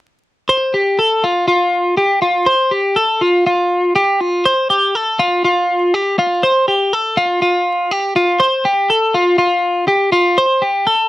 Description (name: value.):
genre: indie pop.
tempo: 121 BPM.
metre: 4/4.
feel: straight.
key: unclear.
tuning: A4 = 444 Hz.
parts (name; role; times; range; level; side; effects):
twelve-string electric guitar; solo; 0.5-11.1 s; F4 to C5; -12 LUFS; equal; slapback echo.
room: light reverb.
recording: dry, close 1970s-style studio recording, vinyl crackle.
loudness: -12 LUFS.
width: side -16 dB against mid.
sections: 0.5-8.4 A section; 8.4-11.1 B section.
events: none.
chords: none.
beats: | 0.49 0.98 1.48 1.98 | 2.47 2.96 3.46 3.95 | 4.45 4.94 5.44 5.93 | 6.42 6.92 7.41 7.91 | 8.40 8.89 9.38 9.88 | 10.37 10.86.